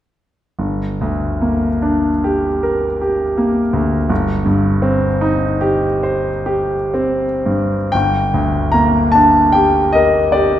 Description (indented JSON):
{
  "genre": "classical, romantic nocturne for solo piano",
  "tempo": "36-56 BPM (dotted quarters)",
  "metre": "9/8",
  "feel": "rubato",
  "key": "G minor",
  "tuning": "A4 = 442 Hz",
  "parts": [
    { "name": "clear concert grand piano", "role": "solo", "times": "0.6-10.6 s", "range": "G1 to Bb5", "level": "-13 LUFS", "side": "equal", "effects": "none" }
  ],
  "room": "wet recital hall reverb, RT60 1.5 s",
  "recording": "heard from further back in the room",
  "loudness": "-13 LUFS",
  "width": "side -11 dB against mid",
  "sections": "0.6-7.9 A section; 7.9-10.6 B section",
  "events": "none",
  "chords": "0.6 Gm; 4.1 Cm/G; 7.9 Gm"
}